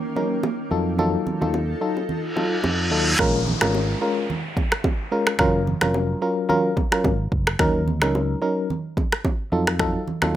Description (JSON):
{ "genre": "afrobeats", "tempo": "109 BPM", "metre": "4/4", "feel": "swing 55% on 16ths", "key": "Bb minor", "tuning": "A4 = 442 Hz", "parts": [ { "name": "granular cloud pad", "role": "sustained chords", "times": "0.0-3.2 s", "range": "Eb3 to A4", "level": "-29 LUFS", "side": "equal", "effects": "built-in reverb, plate reverb" }, { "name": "FM electric piano with auto-pan", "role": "accompaniment", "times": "0.2-10.4 s", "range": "Gb3 to Bb4", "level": "-23 LUFS", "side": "left 1 dB", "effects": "plate reverb" }, { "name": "bongos and congas", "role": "percussion", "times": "0.2-10.3 s", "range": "none", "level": "-28 LUFS", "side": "right 3 dB", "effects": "none" }, { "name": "fingered electric bass", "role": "bass", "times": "0.7-10.4 s", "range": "F1 to F2", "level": "-24 LUFS", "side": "equal", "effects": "none" }, { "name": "reverse cymbal and downlifter", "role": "sound effects", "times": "2.3-7.6 s", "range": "none", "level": "-27 LUFS", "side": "equal", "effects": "none" }, { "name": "afro-pop drum kit", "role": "drums", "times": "3.2-10.3 s", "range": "finger snaps, kick drum, rim click", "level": "-22 LUFS", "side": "equal", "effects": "none" } ], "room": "moderate studio reverb, RT60 0.6 s", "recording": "none", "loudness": "-20 LUFS", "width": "side -12 dB against mid", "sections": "0.0-3.2 A section; 3.2-10.4 B section", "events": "reverse cymbal 2.3-3.2; hi-hats muted 3.2-10.4", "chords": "0.0 Ebm7; 0.7 F7b9; 3.2 Bbm7; 5.4 Gbmaj7; 7.6 Ebm7; 9.5 F7b9" }